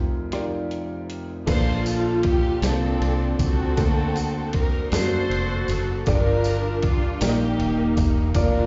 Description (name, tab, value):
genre	slow gospel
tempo	52 BPM (dotted quarters)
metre	6/8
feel	straight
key	Bb major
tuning	A4 = 440 Hz
part	warm grand piano	accompaniment	0.0-8.7 s	F1 to Eb5	-29 LUFS	equal	slapback echo
part	lo-fi sampler-style drum kit	drums	0.3-8.5 s	crash cymbal, hi-hat, kick drum, ride cymbal, rim click, snare drum	-28 LUFS	equal	overdrive
part	warm studio string section	melody	1.5-8.7 s	Bb3 to C5	-28 LUFS	equal	slapback echo
part	fingered electric bass	bass	1.5-8.7 s	Eb1 to F#2	-27 LUFS	equal	none
part	tambourine	percussion	1.5-8.7 s	none	-40 LUFS	equal	none
room	light reverb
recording	live gig heard through the venue's PA, recital hall reverb, nothing above 7.7 kHz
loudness	-23 LUFS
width	mono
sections	0.0-1.5 A section; 1.5-8.7 B section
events	none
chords	0.0 F9sus4; 1.5 Bbmaj9; 3.8 D7b13; 6.1 Gm7; 7.2 Eb